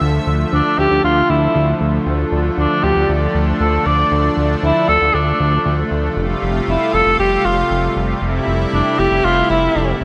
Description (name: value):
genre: synthwave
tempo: 117 BPM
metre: 4/4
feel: straight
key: D minor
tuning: A4 = 440 Hz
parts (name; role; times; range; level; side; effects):
- lush unison pad; sustained chords; 0.0-10.0 s; C3 to E5; -22 LUFS; equal; chorus
- fat analog bass; bass; 0.0-10.0 s; F1 to D2; -21 LUFS; equal; tube saturation
- mellow tenor saxophone; melody; 0.5-10.0 s; D4 to D5; -19 LUFS; equal; delay
room: moderate lush hall reverb, RT60 2.4 s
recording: bright 1980s-style digital production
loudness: -16 LUFS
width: mono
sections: 0.0-10.0 A section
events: none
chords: 0.0 Dmadd9; 6.2 Fadd9